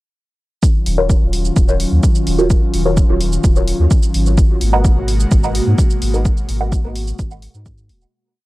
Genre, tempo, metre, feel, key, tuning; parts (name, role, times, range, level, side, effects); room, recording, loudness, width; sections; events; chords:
dub techno; 128 BPM; 4/4; straight; Eb minor; A4 = 440 Hz
airy breathy pad; sustained chords; 0.6-8.1 s; Cb3 to Gb4; -22 LUFS; equal; chorus, sidechain pumping
electronic kick drum; drums; 0.6-7.8 s; -14 LUFS; equal; overdrive
electronic shaker and hi-hat; drums; 0.6-8.1 s; -28 LUFS; right 1 dB; overdrive
soft dub sub bass; bass; 0.9-8.1 s; Eb1 to Ab2; -17 LUFS; equal; tube saturation, sidechain pumping
filtered dub chord stab; stabs; 1.0-6.8 s; F4 to Gb5; -20 LUFS; equal; phaser, sidechain pumping, dub echo
digital ambience; dry, gritty hardware recording, cassette tape; -13 LUFS; side -19 dB against mid
0.6-8.1 groove
fade-out 5.6-8.1
0.6 Ebm9; 4.4 Abm9